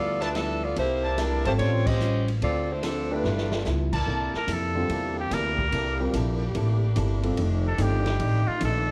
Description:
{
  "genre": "jazz, big band swing",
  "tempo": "145 BPM",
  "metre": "4/4",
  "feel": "swing 67% on 8ths",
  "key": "C mixolydian",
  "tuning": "A4 = 440 Hz",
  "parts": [
    { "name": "warm saxophone section", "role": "melody", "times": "0.0-3.7 s", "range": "F3 to E5", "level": "-30 LUFS", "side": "equal", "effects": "none" },
    { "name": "vintage hollow-body jazz guitar", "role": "accompaniment", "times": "0.0-8.9 s", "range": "F2 to A4", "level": "-35 LUFS", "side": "equal", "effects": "none" },
    { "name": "upright bass", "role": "bass", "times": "0.0-8.9 s", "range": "F1 to F2", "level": "-29 LUFS", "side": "equal", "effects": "none" },
    { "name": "clear trumpet section", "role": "stabs", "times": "0.2-4.5 s", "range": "E4 to A5", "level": "-34 LUFS", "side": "equal", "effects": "none" },
    { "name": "swinging big-band drum kit", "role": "drums", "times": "0.2-8.7 s", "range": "crash cymbal, hi-hat, kick drum, ride cymbal, snare drum", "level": "-38 LUFS", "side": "equal", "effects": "none" },
    { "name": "warm concert grand piano", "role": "accompaniment", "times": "1.4-8.0 s", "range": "D3 to B4", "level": "-34 LUFS", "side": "equal", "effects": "none" },
    { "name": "warm saxophone section", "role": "sustained chords", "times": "4.1-8.9 s", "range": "G3 to G4", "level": "-38 LUFS", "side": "equal", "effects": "none" },
    { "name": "clear trumpet", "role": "melody", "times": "4.4-8.9 s", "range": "F4 to Bb4", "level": "-31 LUFS", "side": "equal", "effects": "none" }
  ],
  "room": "light reverb",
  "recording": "worn, warbling old tape, cassette tape, warbly pitch drift",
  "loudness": "-26 LUFS",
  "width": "mono",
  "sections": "0.0-4.1 A section; 4.1-8.9 B section",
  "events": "band accent 1.8; drum fill 3.2-3.7; trumpet solo 4.1-8.9",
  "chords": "0.0 G13; 0.8 C13; 1.6 A7alt; 2.4 Dm7; 3.2 G13; 4.1 C13; 7.4 F13"
}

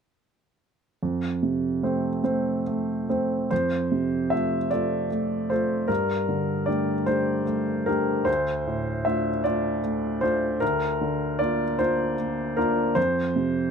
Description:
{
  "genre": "neoclassical minimalist piano",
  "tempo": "51 BPM (dotted quarters)",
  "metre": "6/8",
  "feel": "rubato",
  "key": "unclear",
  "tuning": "A4 = 441 Hz",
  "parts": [
    { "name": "clear upright piano", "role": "solo", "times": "1.0-13.7 s", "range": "D2 to E5", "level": "-23 LUFS", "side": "equal", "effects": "none" }
  ],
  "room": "light reverb",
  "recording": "close, detailed microphones",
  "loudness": "-23 LUFS",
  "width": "side -6 dB against mid",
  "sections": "1.0-3.5 A section; 3.5-13.7 B section",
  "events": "none",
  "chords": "1.0 F; 5.9 Gmadd9; 8.3 Dm7; 10.6 Bb/D; 13.0 F5"
}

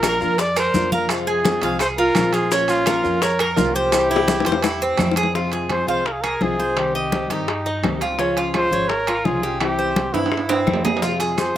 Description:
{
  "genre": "latin, Cuban son and guajira",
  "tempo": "169 BPM",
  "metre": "4/4",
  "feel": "straight",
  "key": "F minor",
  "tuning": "A4 = 440 Hz",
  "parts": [
    { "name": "breathy trumpet", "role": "melody", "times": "0.0-11.6 s", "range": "Eb4 to D5", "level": "-23 LUFS", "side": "equal", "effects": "none" },
    { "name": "nylon-string guitar", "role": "accompaniment", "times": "0.0-11.6 s", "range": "C3 to G4", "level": "-26 LUFS", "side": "left 4 dB", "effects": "slapback echo" },
    { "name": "Cuban tres", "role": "arpeggios", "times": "0.0-11.5 s", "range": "C4 to F5", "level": "-22 LUFS", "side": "right 2 dB", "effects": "slapback echo" },
    { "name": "upright bass", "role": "bass", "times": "0.0-11.5 s", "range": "Ab1 to G2", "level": "-30 LUFS", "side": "equal", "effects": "none" },
    { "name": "bongos", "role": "percussion", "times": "0.0-11.6 s", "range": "none", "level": "-26 LUFS", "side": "left 8 dB", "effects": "none" },
    { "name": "claves", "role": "percussion", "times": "0.0-11.6 s", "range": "none", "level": "-35 LUFS", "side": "left 3 dB", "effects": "none" },
    { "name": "congas", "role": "percussion", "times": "0.0-11.6 s", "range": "none", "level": "-26 LUFS", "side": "left 1 dB", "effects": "none" },
    { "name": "maracas", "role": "percussion", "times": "0.0-5.4, 11.0-11.6 s", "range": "none", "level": "-33 LUFS", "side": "right 5 dB", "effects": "none" },
    { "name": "timbales", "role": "percussion", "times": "0.0-11.6 s", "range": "none", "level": "-27 LUFS", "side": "right 7 dB", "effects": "slapback echo" }
  ],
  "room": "little or no reverb",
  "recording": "recorded outdoors, with no room sound",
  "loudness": "-17 LUFS",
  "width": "side -11 dB against mid",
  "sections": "0.0-5.4 A section; 5.4-11.6 B section",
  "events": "drum fill 3.9-5.4, 10.1-11.0",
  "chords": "0.0 Bb; 1.1 Fm; 2.5 Bbm; 3.9 C; 5.4 Fm; 6.8 Cm; 8.2 Db; 9.6 C; 11.0 Fm"
}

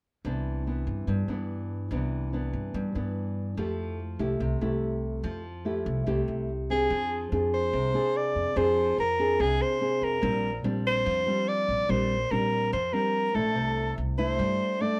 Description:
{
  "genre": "bossa nova",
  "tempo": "144 BPM",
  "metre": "4/4",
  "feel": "straight",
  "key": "C major",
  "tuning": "A4 = 441 Hz",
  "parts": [
    { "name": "nylon-string guitar", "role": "accompaniment", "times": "0.2-15.0 s", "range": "G2 to Ab4", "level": "-32 LUFS", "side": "equal", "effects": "none" },
    { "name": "upright bass", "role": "bass", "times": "0.2-14.6 s", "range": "Bb1 to G2", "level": "-34 LUFS", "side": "equal", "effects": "none" },
    { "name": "mellow soprano saxophone", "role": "melody", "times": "6.7-15.0 s", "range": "Ab4 to D5", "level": "-29 LUFS", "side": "equal", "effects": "plate reverb" }
  ],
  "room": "moderate studio reverb, RT60 0.5 s",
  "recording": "none",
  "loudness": "-28 LUFS",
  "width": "mono",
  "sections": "0.2-6.9 A section; 6.9-15.0 B section",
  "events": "none",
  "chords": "0.2 Cmaj9; 3.6 Fmaj9; 6.9 Fm6; 10.2 Bb69; 13.6 C69"
}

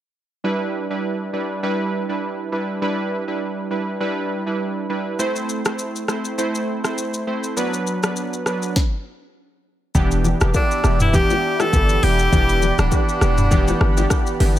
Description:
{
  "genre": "afrobeats",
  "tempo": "101 BPM",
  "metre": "4/4",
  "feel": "swing 55% on 16ths",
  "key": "E minor",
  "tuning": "A4 = 436 Hz",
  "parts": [
    { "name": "warm analog keys", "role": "accompaniment", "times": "0.4-14.6 s", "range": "E3 to C5", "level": "-22 LUFS", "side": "right 2 dB", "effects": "chorus" },
    { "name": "afro-pop drum kit", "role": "drums", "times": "5.2-14.6 s", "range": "hi-hat, kick drum, rim click, shaker, snare drum, toms", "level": "-21 LUFS", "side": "equal", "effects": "none" },
    { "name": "hard-hitting 808-style bass", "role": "bass", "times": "9.9-14.6 s", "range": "D1 to G1", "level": "-19 LUFS", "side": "equal", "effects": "none" },
    { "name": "congas and bongos", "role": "percussion", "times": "9.9-14.6 s", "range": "none", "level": "-27 LUFS", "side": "left 6 dB", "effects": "none" },
    { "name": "lush unison pad", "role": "sustained chords", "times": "10.0-14.6 s", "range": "G4 to B5", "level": "-28 LUFS", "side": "right 1 dB", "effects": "chorus" },
    { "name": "clear tenor saxophone", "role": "melody", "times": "10.6-14.1 s", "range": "D4 to A4", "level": "-21 LUFS", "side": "equal", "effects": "none" }
  ],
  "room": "little or no reverb",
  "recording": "none",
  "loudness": "-18 LUFS",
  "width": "side -12 dB against mid",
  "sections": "0.4-9.9 A section; 9.9-14.6 B section",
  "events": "stop 8.8-9.9",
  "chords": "0.4 Em7; 5.2 Am; 7.6 Bm; 9.9 Em7"
}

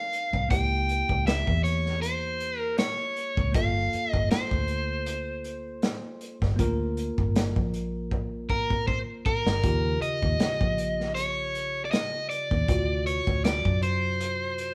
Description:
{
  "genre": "straight-eighth soul blues",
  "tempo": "79 BPM",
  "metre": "4/4",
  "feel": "swing 55% on 16ths",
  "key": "G minor",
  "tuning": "A4 = 439 Hz",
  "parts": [
    { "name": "crunchy overdriven guitar", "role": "melody", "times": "0.0-14.7 s", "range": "Bb4 to G5", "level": "-31 LUFS", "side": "equal", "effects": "none" },
    { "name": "bell-like tine electric piano", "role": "accompaniment", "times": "0.0-14.7 s", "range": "C3 to Bb4", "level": "-38 LUFS", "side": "equal", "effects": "none" },
    { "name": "crunchy breakbeat drum kit", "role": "drums", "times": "0.1-14.7 s", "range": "hi-hat, kick drum, snare drum", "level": "-30 LUFS", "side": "equal", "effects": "none" },
    { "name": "vintage muted fingered electric bass", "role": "bass", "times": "0.3-14.7 s", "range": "G1 to F#2", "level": "-32 LUFS", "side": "equal", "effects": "none" }
  ],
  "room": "moderate stone room reverb, RT60 1.1 s",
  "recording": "band playing live in one room",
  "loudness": "-27 LUFS",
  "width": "mono",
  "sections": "0.0-14.7 A section",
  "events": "drum fill 8.1-9.6",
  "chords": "0.5 C#dim7; 3.5 Gm9; 9.6 Eb7; 12.7 D7#9"
}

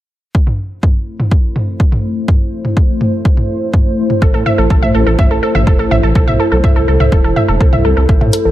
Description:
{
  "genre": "melodic techno",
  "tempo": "124 BPM",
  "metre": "4/4",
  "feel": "straight",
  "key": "A minor",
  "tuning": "A4 = 445 Hz",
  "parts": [
    { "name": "dark analog pad", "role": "sustained chords", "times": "1.1-8.5 s", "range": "A3 to C5", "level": "-20 LUFS", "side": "left 1 dB", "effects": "chorus, sidechain pumping" },
    { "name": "electronic kick drum", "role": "drums", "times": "0.3-8.2 s", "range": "none", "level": "-12 LUFS", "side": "equal", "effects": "overdrive" },
    { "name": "warbly tape-like pad", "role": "texture", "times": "1.3-8.5 s", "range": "E4 to C5", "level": "-21 LUFS", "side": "equal", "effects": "chorus, built-in reverb, sidechain pumping" },
    { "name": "punchy analog drum machine", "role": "drums", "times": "0.5-8.4 s", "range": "hi-hat, toms", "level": "-19 LUFS", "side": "equal", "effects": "overdrive, low-pass filter on toms, low-pass filter on hats" },
    { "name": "wide unison pluck", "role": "arpeggios", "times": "4.2-8.5 s", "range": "A4 to E5", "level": "-17 LUFS", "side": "right 1 dB", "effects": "sidechain pumping, ping-pong delay" },
    { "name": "dark detuned saw bass", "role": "bass", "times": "4.2-8.5 s", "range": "E1 to A2", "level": "-14 LUFS", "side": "equal", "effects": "sidechain pumping" }
  ],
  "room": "little or no reverb",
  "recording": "none",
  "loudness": "-10 LUFS",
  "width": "side -14 dB against mid",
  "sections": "0.3-8.1 A section",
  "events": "fade-in on ambient pad 0.3-8.1",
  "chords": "0.3 Am"
}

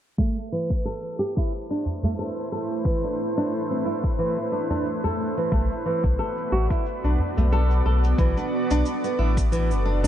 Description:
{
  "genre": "organic downtempo",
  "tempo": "90 BPM",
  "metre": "4/4",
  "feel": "swing 56% on 16ths",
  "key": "A dorian",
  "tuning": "A4 = 445 Hz",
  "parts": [
    { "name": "granular cloud pad", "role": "sustained chords", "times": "1.5-10.1 s", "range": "A3 to D5", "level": "-28 LUFS", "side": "right 1 dB", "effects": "built-in reverb, sidechain pumping" },
    { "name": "nylon-string guitar", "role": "arpeggios", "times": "0.2-10.1 s", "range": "E3 to A4", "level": "-27 LUFS", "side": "right 1 dB", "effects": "low-pass filter, digital delay" },
    { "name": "cabasa", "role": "drums", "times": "0.2-10.1 s", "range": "none", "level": "-41 LUFS", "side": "right 4 dB", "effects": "none" },
    { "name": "electronic kick drum", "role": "drums", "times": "0.2-9.5 s", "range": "none", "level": "-24 LUFS", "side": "equal", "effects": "none" },
    { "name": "udu", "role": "percussion", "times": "1.9-10.1 s", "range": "none", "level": "-28 LUFS", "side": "right 1 dB", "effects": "none" },
    { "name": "warm sub bass", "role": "bass", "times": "5.5-10.1 s", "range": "F#1 to B1", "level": "-21 LUFS", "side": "equal", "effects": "sidechain pumping" }
  ],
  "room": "light reverb",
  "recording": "low-pass filter",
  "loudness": "-22 LUFS",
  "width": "side -11 dB against mid",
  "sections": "0.2-10.1 A section",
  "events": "filter sweep on nylon-string guitar 0.2-10.1; filter sweep 0.2-10.1",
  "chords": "0.2 Amadd9; 5.5 Bm7"
}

